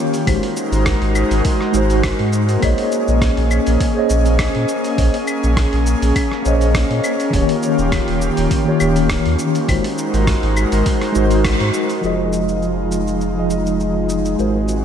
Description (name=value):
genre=sunset chillout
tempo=102 BPM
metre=4/4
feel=swing 54% on 16ths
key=Bb minor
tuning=A4 = 444 Hz
part: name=mellow tine electric piano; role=accompaniment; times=0.0-14.6 s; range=Eb3 to Eb5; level=-20 LUFS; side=moving between left 7 dB and right 3 dB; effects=medium stereo tremolo, auto-pan, analog delay
part: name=airy breathy pad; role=sustained chords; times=0.0-14.8 s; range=Eb3 to C5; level=-20 LUFS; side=left 1 dB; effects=chorus
part: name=dusty soul sampler-style drum kit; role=drums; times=0.1-14.8 s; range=claves, hi-hat, rim click, shaker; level=-25 LUFS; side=equal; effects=none
part: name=warm sub bass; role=bass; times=0.3-14.8 s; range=Eb1 to Bb2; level=-18 LUFS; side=equal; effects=none
part: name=electronic kick drum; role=drums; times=0.3-11.6 s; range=none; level=-20 LUFS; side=equal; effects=none
room=moderate lush hall reverb, RT60 2.4 s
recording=dreamy mix soaked in reverb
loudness=-14 LUFS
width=side -8 dB against mid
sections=0.0-12.0 A section; 12.0-14.8 B section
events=band accent 11.4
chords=0.3 Ab7; 2.6 Bbm11; 7.3 Eb7; 9.7 Ab7; 12.0 Fm7